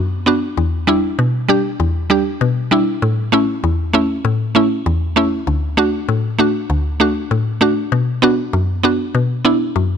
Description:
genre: dancehall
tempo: 98 BPM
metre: 4/4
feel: straight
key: B minor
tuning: A4 = 440 Hz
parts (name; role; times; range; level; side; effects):
- mallet-like synth pluck; solo; 0.0-10.0 s; D2 to G4; -14 LUFS; equal; chorus
room: light reverb, digital ambience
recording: none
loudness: -14 LUFS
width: side -7 dB against mid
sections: 0.0-7.9 A section; 7.9-10.0 B section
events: none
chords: 0.0 Bm; 0.6 Em7; 3.0 A; 5.5 D; 7.9 Bm

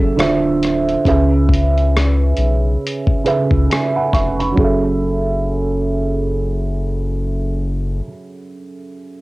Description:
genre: lo-fi hip hop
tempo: 68 BPM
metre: 4/4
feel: swing 57% on 16ths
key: F# minor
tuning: A4 = 440 Hz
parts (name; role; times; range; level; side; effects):
- felt-muted upright piano; accompaniment; 0.0-9.2 s; C#3 to C#6; -18 LUFS; right 2 dB; cassette tape, low-pass filter
- soft dub sub bass; bass; 0.0-8.0 s; D1 to C#2; -18 LUFS; left 1 dB; none
- lo-fi sampler-style drum kit; drums; 0.2-4.8 s; hi-hat, kick drum, rim click; -18 LUFS; left 1 dB; none
room: light reverb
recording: home recording on cassette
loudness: -14 LUFS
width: side -20 dB against mid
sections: 0.0-4.6 A section; 4.6-8.1 B section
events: felt piano fill 3.2-4.6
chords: 0.2 Dm7; 1.0 C#m7; 4.6 F#m9

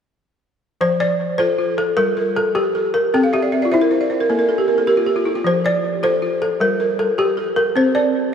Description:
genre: west african traditional, West African string and xylophone music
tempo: 104 BPM (dotted quarters)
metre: 12/8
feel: straight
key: F major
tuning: A4 = 440 Hz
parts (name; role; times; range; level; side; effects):
- balafon; melody; 0.8-8.3 s; E4 to D5; -18 LUFS; left 1 dB; analog delay
- balafon; arpeggios; 0.8-8.3 s; F3 to A5; -18 LUFS; right 1 dB; analog delay
room: wet huge ambient reverb, RT60 4.4 s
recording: dreamy mix soaked in reverb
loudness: -16 LUFS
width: side -7 dB against mid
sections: 0.8-8.3 A section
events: balafon fill 3.1-5.5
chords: 0.8 F; 2.0 Gm; 3.1 C; 4.3 N.C.; 5.5 F; 6.6 Gm; 7.8 N.C.

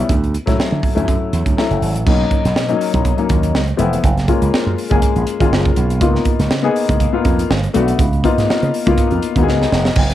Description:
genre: polished 1980s jazz-funk pop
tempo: 122 BPM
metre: 4/4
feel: swing 54% on 16ths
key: unclear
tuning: A4 = 440 Hz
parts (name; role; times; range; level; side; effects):
- warm baby grand piano; accompaniment; 0.0-10.0 s; E#3 to G#4; -18 LUFS; left 5 dB; wide subtle chorus, cassette tape
- slap bass with an envelope filter; bass; 0.1-10.1 s; E1 to D3; -18 LUFS; right 2 dB; none
- crisp fusion drum kit; drums; 0.1-10.1 s; crash cymbal, hi-hat, kick drum, snare drum; -18 LUFS; right 2 dB; cassette tape
room: light reverb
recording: home recording on cassette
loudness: -13 LUFS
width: side -12 dB against mid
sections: 0.0-2.1 A section; 2.1-10.0 B section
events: drum fill 9.5-10.0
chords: 0.1 Dmaj9; 2.1 Bmaj7; 3.5 C#7alt; 4.0 F#maj7; 6.0 C#13; 7.5 Gmaj7; 8.0 C#13

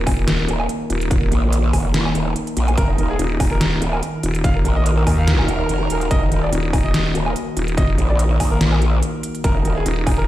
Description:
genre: heavy wobble dubstep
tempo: 144 BPM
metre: 4/4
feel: swing 54% on 16ths, half-time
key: Eb minor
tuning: A4 = 440 Hz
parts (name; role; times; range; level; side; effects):
- evolving wavetable pad; sustained chords; 0.0-10.3 s; Eb3 to Bb4; -25 LUFS; equal; phaser, built-in reverb, sidechain pumping
- vowel-sweep wobble bass; bass; 0.0-10.3 s; Eb1 to Eb2; -20 LUFS; equal; chorus, overdrive
- dubstep drum kit; drums; 0.1-10.2 s; hi-hat, snare drum, woodblock; -24 LUFS; equal; none
- electronic kick drum; drums; 0.1-10.2 s; none; -19 LUFS; equal; overdrive
- growl bass; bass; 0.5-9.8 s; Eb1 to Bb1; -19 LUFS; equal; chorus, overdrive
- clear baby grand piano; melody; 2.8-10.3 s; Eb4 to F5; -27 LUFS; equal; ping-pong delay
- clear brass ensemble; stabs; 3.0-9.7 s; Eb4 to Bb4; -29 LUFS; right 4 dB; ping-pong delay
room: digital ambience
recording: played on a big sound system in a bare room, large studio reverb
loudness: -16 LUFS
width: side -14 dB against mid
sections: 0.0-10.3 A section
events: none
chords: 0.0 Ebm

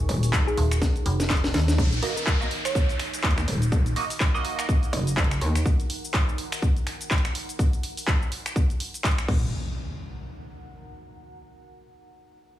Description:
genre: bass house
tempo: 124 BPM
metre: 4/4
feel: swing 58% on 16ths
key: Eb minor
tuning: A4 = 439 Hz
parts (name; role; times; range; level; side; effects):
- sweeping resonant pad; sustained chords; 0.0-1.8 s; Eb3 to Ab4; -42 LUFS; equal; none
- metallic FM bass; bass; 0.0-1.8 s; Eb1 to Eb2; -23 LUFS; equal; overdrive, sidechain pumping
- house drum kit; drums; 0.0-9.4 s; crash cymbal, finger snaps, handclaps, hi-hat, shaker, snare drum; -29 LUFS; left 1 dB; overdrive
- deep dark ambient pad; texture; 0.0-11.4 s; Eb4 to Db6; -40 LUFS; right 3 dB; chorus, built-in reverb, sidechain pumping
- metallic wobble bass; bass; 0.1-5.6, 9.3-9.5 s; Eb1 to Eb2; -24 LUFS; equal; chorus, tube saturation, sidechain pumping
- electronic kick drum; drums; 0.3-9.4 s; none; -23 LUFS; equal; overdrive
- thumb-piano-like synth pluck; melody; 0.5-3.0 s; Ab4 to Db5; -32 LUFS; right 2 dB; chorus
- downlifter and impact; sound effects; 1.8-5.7, 9.3-11.2 s; none; -34 LUFS; equal; none
- band-passed chord stab; stabs; 2.0-5.9 s; Bb3 to Eb5; -32 LUFS; right 5 dB; phaser, sidechain pumping, digital delay
room: digital ambience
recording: studio reverb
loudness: -22 LUFS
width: side -13 dB against mid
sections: 0.0-1.8 A section; 1.8-9.5 B section; 9.5-11.5 C section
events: drop 0.0-1.8; drum fill 0.8-1.8; band accent 1.7; fade-out on ambient pad 1.8-9.5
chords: 0.0 Ebm; 9.3 Eb5; 9.5 Ebm

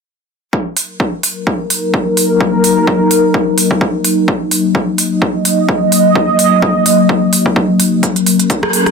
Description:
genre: bass house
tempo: 128 BPM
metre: 4/4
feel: swing 56% on 16ths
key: Eb minor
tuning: A4 = 440 Hz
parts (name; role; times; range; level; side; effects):
- sweeping resonant pad; sustained chords; 0.5-8.9 s; Gb3 to Eb5; -12 LUFS; left 1 dB; chorus, sidechain pumping
- electronic kick drum; drums; 0.5-8.6 s; none; -15 LUFS; equal; high-pass filter on kick, high-pass filter on room
- big-room dance drum kit; drums; 0.8-8.9 s; hi-hat, rim click; -15 LUFS; right 2 dB; none
room: moderate lush hall reverb, RT60 2.0 s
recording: dense, heavily limited modern master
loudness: -10 LUFS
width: side -5 dB against mid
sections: 0.5-8.9 A section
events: filter sweep on analog synth pad 0.5-8.9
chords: 0.5 Ebm

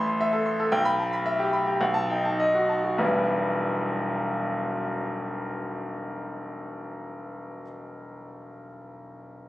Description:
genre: classical, virtuoso piano study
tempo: 98-116 BPM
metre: 4/4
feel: rubato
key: E minor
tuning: A4 = 440 Hz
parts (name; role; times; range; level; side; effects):
- bright grand piano; solo; 0.0-9.5 s; E1 to C6; -25 LUFS; equal; none
room: moderate recital hall reverb, RT60 1.4 s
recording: recorded on a phone in the room, club reverb, compression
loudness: -24 LUFS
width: side -16 dB against mid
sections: 0.0-3.0 A section; 3.0-7.7 B section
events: slowing down 0.0-3.0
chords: 0.0 Am; 0.7 Em/B; 1.8 B7; 3.0 Em

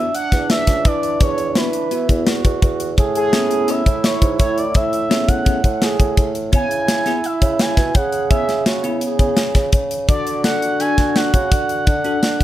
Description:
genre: progressive instrumental, band music in an uneven meter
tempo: 169 BPM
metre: 5/4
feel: straight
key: unclear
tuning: A4 = 440 Hz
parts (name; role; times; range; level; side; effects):
- expressive synth lead; melody; 0.0-12.4 s; G#4 to G#5; -21 LUFS; right 1 dB; chorus, digital delay
- mellow trombone; second line; 0.0-12.4 s; D4 to G#4; -25 LUFS; right 5 dB; none
- bell-like tine electric piano; accompaniment; 0.0-12.2 s; B3 to A4; -24 LUFS; left 3 dB; fast stereo tremolo
- tight metal drum kit; drums; 0.1-12.4 s; hi-hat, kick drum, snare drum; -18 LUFS; equal; none
- dark bassoon; bass; 0.3-12.4 s; C#2 to E3; -23 LUFS; right 1 dB; none
room: light reverb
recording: dark, warm production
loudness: -15 LUFS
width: side -13 dB against mid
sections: 0.0-12.4 A section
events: none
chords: 0.0 Esus2; 3.0 Amaj7; 6.5 C#m7; 10.1 D

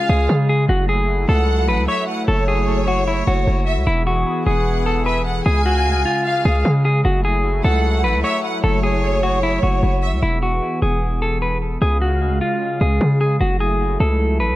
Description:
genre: hip hop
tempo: 151 BPM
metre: 4/4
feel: half-time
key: F# minor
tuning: A4 = 439 Hz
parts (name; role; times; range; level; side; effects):
- clean electric guitar; melody; 0.0-14.6 s; E4 to C#5; -21 LUFS; equal; low-pass filter, analog delay
- warm studio violin section; second line; 0.0-10.2 s; C#5 to G#5; -25 LUFS; equal; analog delay
- warm analog pad; sustained chords; 0.0-14.6 s; C#3 to E#5; -25 LUFS; equal; chorus
- hard-hitting 808-style bass; bass; 0.1-14.6 s; E1 to C#3; -18 LUFS; equal; none
room: light reverb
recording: echo-heavy mix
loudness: -16 LUFS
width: side -16 dB against mid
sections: 0.0-10.2 A section; 10.2-14.6 B section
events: none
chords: 0.0 C#; 0.7 F#m7; 3.9 E; 5.5 C#; 7.0 F#m7; 10.2 E; 11.8 C#; 13.4 F#m7

